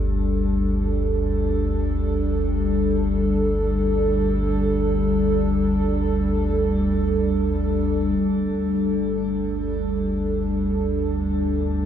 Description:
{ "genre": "dark ambient drone", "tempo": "free time", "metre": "none", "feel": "none", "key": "unclear", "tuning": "A4 = 440 Hz", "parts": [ { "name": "dark analog pad", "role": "sustained chords", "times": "0.0-11.9 s", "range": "G3 to A4", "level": "-22 LUFS", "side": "equal", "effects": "chorus, shimmer reverb" }, { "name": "bronze singing bowl", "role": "arpeggios", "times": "0.0-3.1 s", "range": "G3 to G4", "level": "-37 LUFS", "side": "left 6 dB", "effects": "none" }, { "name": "deep rumbling drone", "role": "drone", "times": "0.0-11.9 s", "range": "G1 to D2", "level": "-24 LUFS", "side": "equal", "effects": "built-in reverb, lush chorus" } ], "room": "wet huge ambient reverb, RT60 7.2 s", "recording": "none", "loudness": "-20 LUFS", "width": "side -9 dB against mid", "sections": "0.0-8.2 A section; 8.2-11.9 A section", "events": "none", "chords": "0.0 G5" }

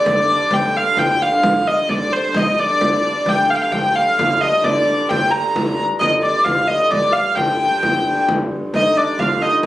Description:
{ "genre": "medieval dance", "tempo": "88 BPM (dotted quarters)", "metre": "6/8", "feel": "straight", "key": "unclear", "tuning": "A4 = 439 Hz", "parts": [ { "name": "clear hurdy-gurdy", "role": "melody", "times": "0.0-9.5 s", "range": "C5 to Bb5", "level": "-16 LUFS", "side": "equal", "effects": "none" }, { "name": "dark hurdy-gurdy", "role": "drone", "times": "0.0-9.7 s", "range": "G2 to D3", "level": "-24 LUFS", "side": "equal", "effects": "none" }, { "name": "frame drum", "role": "percussion", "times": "0.1-9.7 s", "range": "none", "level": "-23 LUFS", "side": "equal", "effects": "none" }, { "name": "hammered dulcimer", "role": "second line", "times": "8.7-9.7 s", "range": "D4 to F4", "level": "-24 LUFS", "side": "right 2 dB", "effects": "none" } ], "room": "light reverb", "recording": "recorded on a phone in the room, club reverb", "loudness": "-14 LUFS", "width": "side -14 dB against mid", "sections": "0.0-8.7 A section", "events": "none", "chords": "none" }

